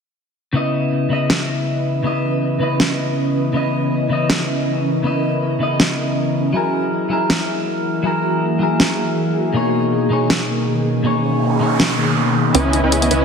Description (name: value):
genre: future bass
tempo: 160 BPM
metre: 4/4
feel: swing 54% on 16ths, half-time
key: C# dorian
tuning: A4 = 439 Hz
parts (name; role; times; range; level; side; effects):
- clean electric guitar; accompaniment; 0.5-13.2 s; B2 to D#5; -18 LUFS; left 2 dB; wide subtle chorus, tape echo
- ethereal airy pad; sustained chords; 1.6-13.2 s; B2 to D#5; -22 LUFS; right 1 dB; ensemble chorus, built-in reverb, phaser
- big-room dance drum kit; drums; 1.3-13.2 s; hi-hat, snare drum; -19 LUFS; equal; high-pass filter on snare, high-pass filter on hats
- noise sweep and riser; sound effects; 11.2-13.2 s; none; -23 LUFS; right 6 dB; none
- wide unison pluck; arpeggios; 12.5-13.2 s; B3 to G#4; -22 LUFS; left 2 dB; tape echo
- dense compressed supersaw; riff; 12.5-13.2 s; C#4 to G#5; -16 LUFS; right 2 dB; low-pass filter
- wide detuned saw bass; bass; 12.5-13.2 s; C#2; -20 LUFS; right 1 dB; chorus
room: wet lush hall reverb, RT60 2.1 s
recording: dense, heavily limited modern master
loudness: -16 LUFS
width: side -6 dB against mid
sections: 0.5-12.5 A section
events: noise sweep 11.2-12.5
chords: 0.5 C#m9; 6.5 F#9; 9.5 Bmaj13; 12.5 C#m9